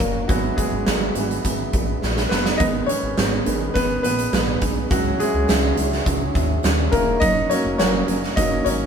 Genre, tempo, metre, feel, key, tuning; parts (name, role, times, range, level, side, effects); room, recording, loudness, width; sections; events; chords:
piano-driven pop; 104 BPM; 4/4; straight; A4 = 440 Hz
clear concert grand piano; accompaniment; 0.0-8.9 s; D#3 to D#5; -22 LUFS; equal
mellow tonewheel organ; sustained chords; 0.0-8.9 s; G#4 to C#6; -33 LUFS; equal; fast rotary speaker
chorused synth bass; bass; 0.0-8.9 s; E1 to D#2; -25 LUFS; equal
huge arena drum kit; drums; 0.0-8.8 s; hi-hat, kick drum, snare drum; -22 LUFS; right 1 dB
picked steel-string acoustic guitar; riff; 2.6-8.9 s; G#2 to A#4; -27 LUFS; right 4 dB
moderate small room reverb, RT60 0.5 s; band playing live in one room; -18 LUFS; side -7 dB against mid
0.0-8.9 A section
grand piano solo 0.0-8.9; drum fill 2.0-2.6
0.3 E/G#; 2.6 G#m; 4.9 C#m; 7.2 F#